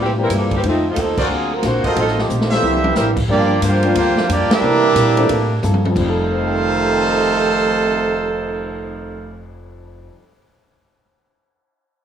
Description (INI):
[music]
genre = jazz, big band swing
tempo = 180 BPM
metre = 4/4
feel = swing 63% on 8ths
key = F mixolydian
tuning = A4 = 440 Hz
[part]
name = warm saxophone section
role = melody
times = 0.0-3.2 s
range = E3 to C5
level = -21 LUFS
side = equal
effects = none
[part]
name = hollow-body jazz guitar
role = accompaniment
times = 0.0-10.2 s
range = F2 to A4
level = -26 LUFS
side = left 3 dB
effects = none
[part]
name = upright bass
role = bass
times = 0.0-10.1 s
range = F1 to C3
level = -22 LUFS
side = equal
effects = none
[part]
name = warm upright piano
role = accompaniment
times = 0.2-10.4 s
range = F2 to Eb7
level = -24 LUFS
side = left 3 dB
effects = none
[part]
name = swinging big-band drum kit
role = drums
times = 0.3-8.6 s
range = crash cymbal, cymbal swell, hi-hat, kick drum, ride cymbal, snare drum, toms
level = -24 LUFS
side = equal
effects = none
[part]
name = bright trumpet section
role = stabs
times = 1.2-3.1 s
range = E#4 to E5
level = -21 LUFS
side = right 2 dB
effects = none
[part]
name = bright trombone section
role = second line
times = 2.6-9.4 s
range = F2 to Bb4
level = -20 LUFS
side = right 5 dB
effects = none
[part]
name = bright trumpet section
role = melody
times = 3.3-9.4 s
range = Bb3 to F5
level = -19 LUFS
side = right 2 dB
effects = none
[sound]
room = moderate large studio reverb, RT60 1.2 s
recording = none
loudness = -14 LUFS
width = side -8 dB against mid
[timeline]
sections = 0.0-3.3 A section; 3.3-6.0 B section; 6.0-8.6 C section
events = band accent 1.1, 4.5; drum fill 2.3-3.0, 5.6-6.0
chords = 0.0 C7; 0.6 F7; 1.3 D7alt; 2.0 F7; 2.6 C7; 3.3 Gm7; 4.6 C13; 6.0 F7